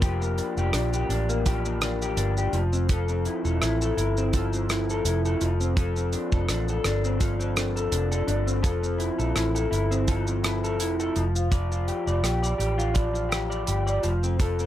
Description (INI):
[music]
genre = indie pop, bedroom pop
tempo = 84 BPM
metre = 4/4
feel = swing 55% on 16ths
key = F major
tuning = A4 = 439 Hz
[part]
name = electric guitar through a small old amp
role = accompaniment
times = 0.0-14.7 s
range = F3 to D5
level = -27 LUFS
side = left 2 dB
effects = analog chorus, warbly pitch drift
[part]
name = vintage muted fingered electric bass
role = bass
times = 0.0-14.7 s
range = E1 to Bb1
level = -26 LUFS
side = equal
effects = none
[part]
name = damped 70s drum kit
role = drums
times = 0.0-14.7 s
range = hi-hat, kick drum, rim click, shaker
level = -28 LUFS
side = right 1 dB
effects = none
[sound]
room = light reverb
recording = none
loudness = -23 LUFS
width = side -12 dB against mid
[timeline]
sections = 0.0-14.7 A section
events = none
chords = 0.0 Gm7/F; 2.5 Fmaj7; 5.4 Dm7/F; 8.6 Fmaj7; 11.2 G7(no3)/F; 14.0 F